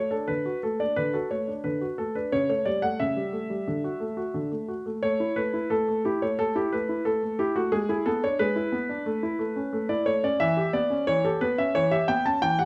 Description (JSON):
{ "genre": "classical-period piano sonatina", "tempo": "89 BPM", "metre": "4/4", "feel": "straight", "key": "unclear", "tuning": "A4 = 440 Hz", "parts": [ { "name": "clear concert grand piano", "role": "solo", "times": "0.0-12.7 s", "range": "C#3 to A5", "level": "-26 LUFS", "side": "equal", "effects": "none" } ], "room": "light reverb", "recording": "close, detailed microphones", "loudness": "-27 LUFS", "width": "mono", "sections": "0.0-12.7 A section", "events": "none", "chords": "0.0 D; 2.3 A7/C#; 3.7 D; 5.0 A5; 7.7 E7/G#; 9.1 A; 10.4 C#m7b5/E" }